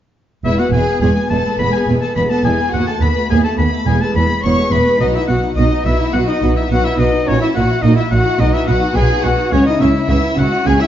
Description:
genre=classical, baroque-style concerto movement with solo episodes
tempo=106 BPM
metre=4/4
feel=straight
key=E major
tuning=A4 = 437 Hz
part: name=bright oboe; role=melody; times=0.4-10.9 s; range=C#5 to C#6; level=-23 LUFS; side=left 3 dB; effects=none
part: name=rich chamber violin section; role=second line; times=0.4-10.9 s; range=C#4 to C#5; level=-20 LUFS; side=left 2 dB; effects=none
part: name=warm studio viola section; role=accompaniment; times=0.4-10.9 s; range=G#3 to F#4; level=-21 LUFS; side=right 1 dB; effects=none
part: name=rich chamber double bass section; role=bass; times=0.4-10.7 s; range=E1 to D#2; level=-18 LUFS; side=right 2 dB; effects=none
part: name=rich studio cello section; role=bass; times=0.4-10.7 s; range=D#2 to C#3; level=-19 LUFS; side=right 2 dB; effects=none
part: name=rich chamber violin section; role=melody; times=0.5-10.9 s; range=C#5 to C#6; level=-24 LUFS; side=left 3 dB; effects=none
part: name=harpsichord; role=accompaniment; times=0.5-10.9 s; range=D#2 to E5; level=-23 LUFS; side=left 2 dB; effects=none
room=moderate recital hall reverb, RT60 1.4 s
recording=dark, warm production, nothing above 7.5 kHz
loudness=-12 LUFS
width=side -11 dB against mid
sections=0.5-10.9 A section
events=none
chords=0.5 E; 2.7 B7/D#; 3.9 E; 5.0 B; 7.3 F#7/A#; 8.4 B; 9.5 C#m

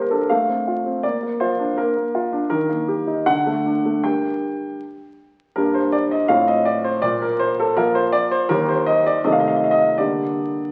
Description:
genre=classical-period piano sonatina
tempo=81 BPM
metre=2/4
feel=straight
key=G minor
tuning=A4 = 443 Hz
part: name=warm baby grand piano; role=solo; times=0.0-10.7 s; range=Eb2 to G5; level=-20 LUFS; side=equal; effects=none
room=wet recital hall reverb, RT60 1.5 s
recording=very old 78 rpm record, vinyl crackle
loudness=-20 LUFS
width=mono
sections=0.0-5.6 A section; 5.6-10.7 B section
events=none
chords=0.3 F/A; 1.0 Bb; 2.5 Eb; 3.3 D; 4.0 Gm; 6.3 F/A; 7.0 Bb5; 8.5 Eb; 9.2 Adim/C; 10.0 Gm/D

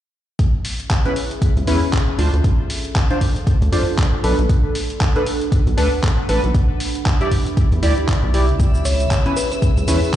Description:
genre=deep house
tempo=117 BPM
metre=4/4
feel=swing 58% on 16ths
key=C# phrygian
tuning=A4 = 440 Hz
part: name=dusty soul sampler-style drum kit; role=drums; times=0.4-10.2 s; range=handclaps, hi-hat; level=-27 LUFS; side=equal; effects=small room reverb
part: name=electronic kick drum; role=drums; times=0.4-10.2 s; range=none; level=-17 LUFS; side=equal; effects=overdrive, small room reverb
part: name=deep dark ambient pad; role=texture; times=1.0-10.2 s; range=C#4 to B5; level=-28 LUFS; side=right 1 dB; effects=chorus, built-in reverb, sidechain pumping
part: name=chorused polysynth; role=stabs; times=1.1-10.0 s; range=C#4 to D5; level=-23 LUFS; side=equal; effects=ping-pong delay
part: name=rubbery square bass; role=bass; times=1.6-10.0 s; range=A1 to F2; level=-17 LUFS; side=equal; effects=sidechain pumping
part: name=tube shaker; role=percussion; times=8.6-10.2 s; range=none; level=-31 LUFS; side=right 3 dB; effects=none
part: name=clear symphonic violin section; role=texture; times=8.6-10.2 s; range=E6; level=-33 LUFS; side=left 2 dB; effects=sidechain pumping
part: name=thumb-piano-like synth pluck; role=melody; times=8.9-9.6 s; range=B4 to C#5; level=-25 LUFS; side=left 1 dB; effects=chorus, ping-pong delay
room=digital ambience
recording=played on a big sound system in a bare room, large studio reverb, nothing above 10.4 kHz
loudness=-15 LUFS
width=side -12 dB against mid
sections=0.4-10.2 A section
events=none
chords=0.4 C#m7; 2.2 Dm7; 4.2 Bm7; 6.5 Em7; 8.6 C#m7

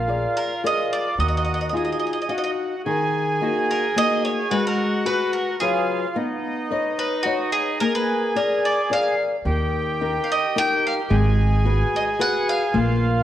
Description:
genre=italian folk, Italian serenade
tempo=109 BPM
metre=3/4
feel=straight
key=Eb minor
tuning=A4 = 438 Hz
part: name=accordion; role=second line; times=0.0-13.2 s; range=D#4 to Ab4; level=-25 LUFS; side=right 2 dB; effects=none
part: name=flamenco guitar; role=accompaniment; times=0.0-13.2 s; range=Eb3 to F5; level=-24 LUFS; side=left 3 dB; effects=none
part: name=upright bass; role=bass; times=0.0-1.9, 9.4-13.2 s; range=Ab1 to Eb2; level=-21 LUFS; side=equal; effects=transformer saturation
part: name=bowl-back mandolin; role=melody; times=0.4-12.7 s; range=F#4 to G5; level=-24 LUFS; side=right 2 dB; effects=none
room=moderate recital hall reverb, RT60 1.6 s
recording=worn, warbling old tape, cassette tape, warbly pitch drift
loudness=-19 LUFS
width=side -11 dB against mid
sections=0.0-2.9 A section; 2.9-13.2 A section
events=none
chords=0.0 Bb7; 1.2 Ebmadd9; 2.9 Ebm; 4.5 Abm7; 6.2 Badd9; 7.8 Bb7; 9.5 Eb; 11.1 Abm7

